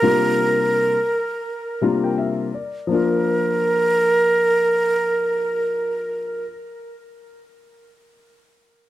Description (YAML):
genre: hip hop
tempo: 84 BPM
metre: 4/4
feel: swing 60% on 16ths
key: Bb major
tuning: A4 = 440 Hz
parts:
  - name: breathy mellow silver concert flute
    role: melody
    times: 0.0-6.5 s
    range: Bb4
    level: -19 LUFS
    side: right 2 dB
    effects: tape echo
  - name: dark concert grand piano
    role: accompaniment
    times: 0.0-6.5 s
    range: C3 to Bb5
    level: -22 LUFS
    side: left 4 dB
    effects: none
room: light reverb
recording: dry, close 1970s-style studio recording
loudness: -18 LUFS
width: side -14 dB against mid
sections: 0.0-2.9 A section; 2.9-5.7 B section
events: grand piano fill 1.5-2.9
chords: 0.0 C9sus4; 2.9 Bb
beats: | 0.03 0.75 1.46 2.17 | 2.89 3.60 4.32 5.03